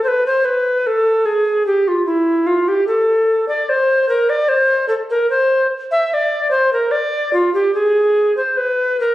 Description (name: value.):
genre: classical, baroque-style fantasia for unaccompanied recorder.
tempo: 74 BPM.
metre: 3/4.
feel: rubato.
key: unclear.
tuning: A4 = 445 Hz.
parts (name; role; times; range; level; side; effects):
mellow bass recorder; solo; 0.0-9.1 s; E4 to E5; -14 LUFS; equal; none.
room: wet recital hall reverb, RT60 1.4 s.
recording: recorded on a phone in the room, club reverb, compression.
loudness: -14 LUFS.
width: side -15 dB against mid.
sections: 0.0-9.1 A section.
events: none.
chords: none.